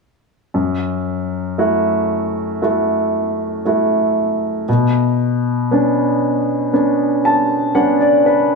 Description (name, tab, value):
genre	pop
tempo	58 BPM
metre	4/4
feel	straight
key	F# minor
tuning	A4 = 436 Hz
part	clear baby grand piano	solo	0.5-8.6 s	F#2 to A5	-14 LUFS	equal	none
room	light reverb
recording	small room reverb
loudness	-15 LUFS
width	side -3 dB against mid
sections	0.5-8.6 A section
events	grand piano fill 6.7-8.6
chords	0.5 F#m7; 4.7 Bmadd9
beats	| 0.54 1.58 2.62 3.65 | 4.68 5.71 6.74 7.75